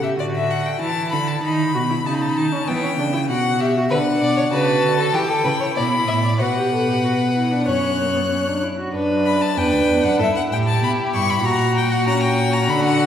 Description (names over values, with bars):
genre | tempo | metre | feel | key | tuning
classical, baroque-style fugue for string quartet | 96 BPM | 4/4 | straight | B minor from 3.9 s | A4 = 442 Hz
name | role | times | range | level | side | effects
clear violin | melody | 0.0-13.1 s | D5 to F#6 | -23 LUFS | left 5 dB | none
rich viola | accompaniment | 0.0-13.1 s | A#3 to A4 | -23 LUFS | right 1 dB | none
clear cello | bass | 0.0-13.1 s | D2 to E3 | -22 LUFS | right 1 dB | none
clear violin | second line | 3.9-13.1 s | F#4 to E5 | -22 LUFS | left 1 dB | none
room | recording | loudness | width
wet concert hall reverb, RT60 2.0 s | heard from further back in the room | -17 LUFS | side -9 dB against mid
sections
0.0-8.9 A section; 8.9-13.1 B section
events
none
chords
0.2 D; 1.4 B7; 2.7 Em; 3.9 Bm; 5.1 C#m7b5 (rootless); 6.4 F#sus4/B; 7.7 F#5; 8.9 Bm/F#; 10.2 Em; 11.4 F#/A#